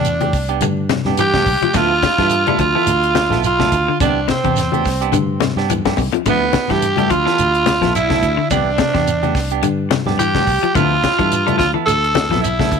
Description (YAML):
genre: afrobeat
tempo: 106 BPM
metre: 4/4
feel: swing 56% on 16ths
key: D dorian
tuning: A4 = 440 Hz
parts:
  - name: raspy tenor saxophone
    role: melody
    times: 0.0-12.8 s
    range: B3 to A4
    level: -18 LUFS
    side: equal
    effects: tape echo
  - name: bright alto saxophone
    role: second line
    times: 0.0-12.8 s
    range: B3 to A4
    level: -22 LUFS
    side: right 15 dB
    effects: none
  - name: clean electric guitar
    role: arpeggios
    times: 0.0-12.5 s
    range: C3 to G3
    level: -22 LUFS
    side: left 12 dB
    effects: wide subtle chorus
  - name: semi-hollow electric guitar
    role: stabs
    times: 0.0-12.8 s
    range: E3 to A4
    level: -24 LUFS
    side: right 16 dB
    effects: none
  - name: fingered electric bass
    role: bass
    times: 0.0-12.8 s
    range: B1 to G2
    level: -21 LUFS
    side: equal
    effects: none
  - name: tight funk drum kit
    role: drums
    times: 0.0-12.8 s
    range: hi-hat, kick drum, snare drum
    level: -24 LUFS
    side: equal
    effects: none
  - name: shekere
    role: percussion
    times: 0.1-12.8 s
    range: none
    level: -26 LUFS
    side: right 8 dB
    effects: none
  - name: congas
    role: percussion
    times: 0.2-12.7 s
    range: none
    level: -22 LUFS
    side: left 11 dB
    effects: none
room: small room ambience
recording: 1960s-style stereo with parts hard left and right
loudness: -14 LUFS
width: side -6 dB against mid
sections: 0.0-12.8 A section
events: drum fill 5.1-6.3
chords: 0.0 Cmaj9; 1.7 Dm69; 4.0 Cmaj9; 6.3 Dm69; 8.5 Cmaj9; 10.8 Dm69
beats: 0.05 0.61 1.18 | 1.74 2.31 2.87 3.44 | 4.00 4.56 5.13 5.69 | 6.25 6.82 7.38 7.94 | 8.51 9.07 9.63 10.19 | 10.76 11.32 11.88 12.44